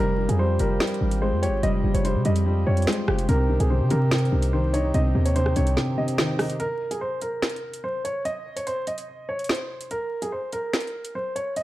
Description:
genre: hip hop, drill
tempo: 145 BPM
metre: 4/4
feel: half-time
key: unclear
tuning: A4 = 440 Hz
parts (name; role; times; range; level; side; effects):
- dark grand piano; melody; 0.0-11.6 s; Ab4 to Eb5; -28 LUFS; right 1 dB; none
- dark baby grand piano; accompaniment; 0.0-6.6 s; C3 to G4; -26 LUFS; left 1 dB; none
- pedal harmonium; sustained chords; 0.0-6.6 s; Eb3 to G4; -34 LUFS; right 3 dB; none
- hard-hitting 808-style bass; bass; 0.0-5.8 s; F1 to C3; -22 LUFS; equal; none
- drill drum kit; drums; 0.3-11.6 s; finger snaps, hi-hat, rim click, snare drum; -27 LUFS; right 1 dB; none
room: light reverb, studio ambience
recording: dark, warm production, vinyl crackle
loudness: -22 LUFS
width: side -16 dB against mid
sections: 0.0-6.6 A section; 6.6-11.6 B section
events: break 5.8-6.6, 6.6-11.6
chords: 0.0 Fmadd9; 3.3 Cm; 6.6 N.C.

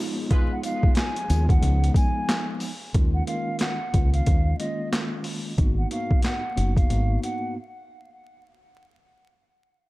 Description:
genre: hip hop, boom-bap hip-hop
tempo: 91 BPM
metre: 4/4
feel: swing 61% on 16ths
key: G# dorian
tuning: A4 = 440 Hz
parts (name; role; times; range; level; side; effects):
- mellow tine electric piano; accompaniment; 0.0-7.6 s; G#2 to F#4; -30 LUFS; equal; medium stereo tremolo, cassette tape, high-pass filter, low-pass filter
- dark studio string section; sustained chords; 0.0-2.9 s; B2 to G#3; -41 LUFS; equal; high-pass filter, low-pass filter
- warm horn section; stabs; 0.3-0.5 s; G#3 to B4; -40 LUFS; left 2 dB; high-pass filter, low-pass filter, tape echo
- boom bap sampler-style drum kit; drums; 0.3-7.4 s; handclaps, hi-hat, kick drum, snare drum; -23 LUFS; equal; overdrive
- mellow hollow silver concert flute; melody; 0.5-7.5 s; D#5 to G#5; -33 LUFS; right 1 dB; high-pass filter, low-pass filter, tape echo
- tambourine; percussion; 0.6-2.8 s; none; -44 LUFS; left 4 dB; none
- deep dub fingered electric bass; bass; 1.3-7.2 s; F#1 to D#2; -22 LUFS; equal; none
room: small room ambience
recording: dark, warm production, vinyl crackle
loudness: -21 LUFS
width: side -19 dB against mid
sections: 0.0-2.9 A section; 2.9-8.2 B section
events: break 0.0-0.3, 7.6-8.2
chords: 0.0 C#7; 2.9 D#7sus4; 5.6 G#m7

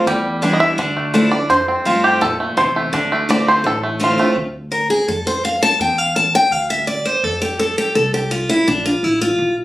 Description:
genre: bluegrass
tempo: 167 BPM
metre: 4/4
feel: straight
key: unclear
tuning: A4 = 440 Hz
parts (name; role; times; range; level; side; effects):
- bluegrass banjo; melody; 0.0-4.4 s; G3 to E5; -16 LUFS; right 1 dB; none
- picked steel-string acoustic guitar; accompaniment; 0.0-9.5 s; E2 to A5; -16 LUFS; left 1 dB; none
- upright bass; bass; 0.1-9.6 s; A1 to G2; -28 LUFS; equal; none
room: moderate studio ambience, RT60 0.5 s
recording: recorded on a phone in the room, studio reverb, compression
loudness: -14 LUFS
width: side -16 dB against mid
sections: 0.0-4.4 A section; 4.4-9.6 A section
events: five-string banjo solo 0.0-4.4; steel-string acoustic guitar solo 4.4-9.6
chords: 0.1 Em7; 0.8 Dmadd9; 1.5 F; 2.9 Dm7; 4.4 Bb7/D; 5.1 F; 5.8 Emadd11; 6.5 Dm9; 7.2 F5; 8.7 Bb5

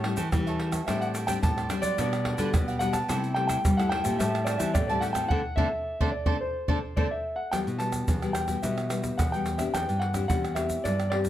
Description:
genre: samba and choro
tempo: 108 BPM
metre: 4/4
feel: straight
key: E minor from 7.5 s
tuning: A4 = 436 Hz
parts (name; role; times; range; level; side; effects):
- cavaquinho; accompaniment; 0.0-7.1 s; D4 to A5; -35 LUFS; right 3 dB; none
- nylon-string guitar; accompaniment; 0.0-11.3 s; G2 to G4; -32 LUFS; left 5 dB; none
- nylon-string guitar; bass; 0.0-11.3 s; E2 to G3; -31 LUFS; equal; none
- pandeiro, tamborim, egg shaker and surdo; percussion; 0.0-11.3 s; none; -30 LUFS; right 1 dB; none
- warm concert grand piano; melody; 0.9-11.2 s; C5 to A5; -30 LUFS; equal; none
room: light reverb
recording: close, detailed microphones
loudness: -25 LUFS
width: side -12 dB against mid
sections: 0.0-7.5 A section; 7.5-11.3 B section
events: band accent 5.3-7.5; drum fill 7.0-7.5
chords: 0.0 A7; 0.9 D7sus4/A; 2.0 Gmaj7/B; 3.1 C6; 4.2 Am7; 5.3 D5; 7.5 Emadd9; 9.7 Cadd9/E

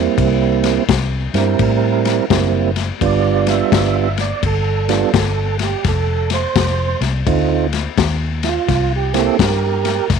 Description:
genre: electric blues shuffle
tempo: 85 BPM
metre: 4/4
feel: swing 64% on 8ths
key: C mixolydian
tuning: A4 = 440 Hz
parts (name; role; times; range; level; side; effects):
- mellow tonewheel organ; accompaniment; 0.0-10.1 s; G3 to E5; -18 LUFS; right 12 dB; slow rotary speaker, chorus vibrato
- vintage muted fingered electric bass; bass; 0.0-10.2 s; F1 to A2; -19 LUFS; left 1 dB; none
- crunchy breakbeat drum kit; drums; 0.2-10.2 s; kick drum, ride cymbal, snare drum; -20 LUFS; left 8 dB; none
room: light reverb, small room ambience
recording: 1960s-style stereo with parts hard left and right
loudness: -14 LUFS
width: side -6 dB against mid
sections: 0.0-10.2 A section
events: none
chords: 0.0 C7; 3.0 G7; 5.8 F7; 8.7 C7

